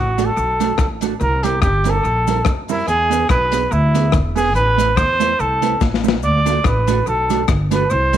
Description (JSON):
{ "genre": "ska", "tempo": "143 BPM", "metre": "4/4", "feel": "swing 55% on 8ths", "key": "D mixolydian", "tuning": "A4 = 441 Hz", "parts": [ { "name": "breathy trumpet", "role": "melody", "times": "0.0-8.2 s", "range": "E4 to D5", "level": "-18 LUFS", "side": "right 1 dB", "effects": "none" }, { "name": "upright bass", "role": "bass", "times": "0.0-8.2 s", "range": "E1 to F#2", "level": "-20 LUFS", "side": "equal", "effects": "none" }, { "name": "mellow electric guitar", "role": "accompaniment", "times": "0.2-8.2 s", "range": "G3 to B4", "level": "-23 LUFS", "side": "right 10 dB", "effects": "tube saturation, analog chorus" }, { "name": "crunchy breakbeat drum kit", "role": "drums", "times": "0.2-8.2 s", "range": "hi-hat, kick drum, rim click, snare drum", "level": "-21 LUFS", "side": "left 3 dB", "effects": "tape echo" }, { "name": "cabasa", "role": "percussion", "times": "0.2-8.2 s", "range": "none", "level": "-39 LUFS", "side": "left 15 dB", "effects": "tape echo" } ], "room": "light reverb, small room ambience", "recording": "1960s-style stereo with parts hard left and right", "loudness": "-14 LUFS", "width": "side -10 dB against mid", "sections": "0.0-8.2 A section", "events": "trumpet solo 0.0-8.2; drum fill 5.8-6.2", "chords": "0.0 D; 1.2 C7; 2.9 E7; 4.6 Amadd9; 6.2 D" }